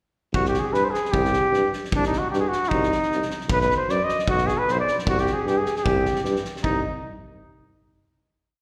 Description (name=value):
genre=balkan folk, Balkan brass band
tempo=153 BPM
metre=2/4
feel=swing 54% on 16ths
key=C hungarian minor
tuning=A4 = 440 Hz
part: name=warm cornet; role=melody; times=0.3-6.8 s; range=D4 to Eb5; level=-25 LUFS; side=equal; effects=slapback echo
part: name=warm tuba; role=bass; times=0.3-6.8 s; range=B1 to G2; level=-28 LUFS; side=equal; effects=none
part: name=natural country drum kit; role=percussion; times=0.3-6.8 s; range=kick drum, snare drum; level=-31 LUFS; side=equal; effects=none
room=light reverb, small room ambience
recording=live gig heard through the venue's PA, recital hall reverb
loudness=-23 LUFS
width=mono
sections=0.3-6.6 A section; 6.6-7.4 final chord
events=none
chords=0.3 Cm; 3.5 B5; 5.1 C5; 6.6 Cm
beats=| 0.34 0.73 | 1.13 1.52 | 1.92 2.31 | 2.71 3.10 | 3.49 3.88 | 4.28 4.67 | 5.06 5.46 | 5.85 6.24 | 6.63